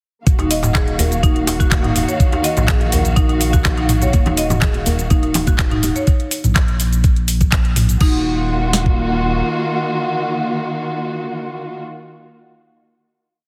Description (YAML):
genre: afro house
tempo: 124 BPM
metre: 4/4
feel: straight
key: Eb minor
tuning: A4 = 440 Hz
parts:
  - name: muted studio string section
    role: sustained chords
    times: 0.3-11.8 s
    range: Eb3 to F5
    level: -24 LUFS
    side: equal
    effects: sidechain pumping
  - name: warm sub bass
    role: bass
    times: 0.3-9.4 s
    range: Eb1 to Bb1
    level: -23 LUFS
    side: equal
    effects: sidechain pumping
  - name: afro-pop drum kit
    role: drums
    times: 0.3-9.0 s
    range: kick drum, snare drum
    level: -17 LUFS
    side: equal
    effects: none
  - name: afro-pop drum kit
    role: drums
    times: 0.3-8.1 s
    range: crash cymbal, finger snaps, handclaps, hi-hat, shaker, toms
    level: -23 LUFS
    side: equal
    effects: none
  - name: marimba with hard mallets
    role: arpeggios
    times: 0.4-8.2 s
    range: Eb4 to Eb5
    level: -24 LUFS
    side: equal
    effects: vintage 12-bit sampler grit, sidechain pumping, digital delay
  - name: djembe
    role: percussion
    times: 0.4-5.9 s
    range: none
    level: -26 LUFS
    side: equal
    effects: none
  - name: congas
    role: percussion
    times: 4.1-5.9 s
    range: none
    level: -26 LUFS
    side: equal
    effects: none
room: light reverb, digital ambience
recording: heavily compressed radio sound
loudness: -17 LUFS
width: mono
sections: 0.3-8.0 drop; 8.0-11.9 final chord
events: drop 0.3-8.0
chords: 0.3 Ebm